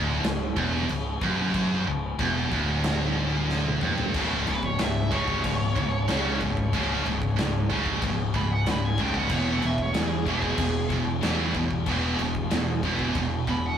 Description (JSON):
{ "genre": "heavy metal", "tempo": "93 BPM", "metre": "4/4", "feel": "straight", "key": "C# minor", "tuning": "A4 = 440 Hz", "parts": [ { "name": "scooped high-gain guitar", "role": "riff", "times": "0.0-13.8 s", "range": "C#2 to E3", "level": "-30 LUFS", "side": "left 4 dB", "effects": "distortion" }, { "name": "scooped high-gain guitar", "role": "riff", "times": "0.0-13.8 s", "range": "C#2 to E3", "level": "-28 LUFS", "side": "right 4 dB", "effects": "distortion" }, { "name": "fuzz fingered electric bass", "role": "bass", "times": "0.0-13.8 s", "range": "C#1 to E2", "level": "-30 LUFS", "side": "equal", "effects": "overdrive" }, { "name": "big rock drum kit", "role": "drums", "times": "0.2-13.6 s", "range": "crash cymbal, kick drum, snare drum, toms", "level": "-29 LUFS", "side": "equal", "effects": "none" }, { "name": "high-gain lead guitar", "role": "melody", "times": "4.5-13.8 s", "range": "G#4 to B5", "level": "-32 LUFS", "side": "right 1 dB", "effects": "distortion, tape echo" } ], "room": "moderate studio reverb, RT60 0.6 s", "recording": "rough rehearsal-room recording", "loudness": "-23 LUFS", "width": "side -8 dB against mid", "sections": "0.0-4.1 A section; 4.1-13.8 B section", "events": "half time 0.0-4.1; drum fill 3.5-4.1; lead electric guitar solo 4.1-13.8", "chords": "0.0 C#m; 4.1 C#5; 9.3 E" }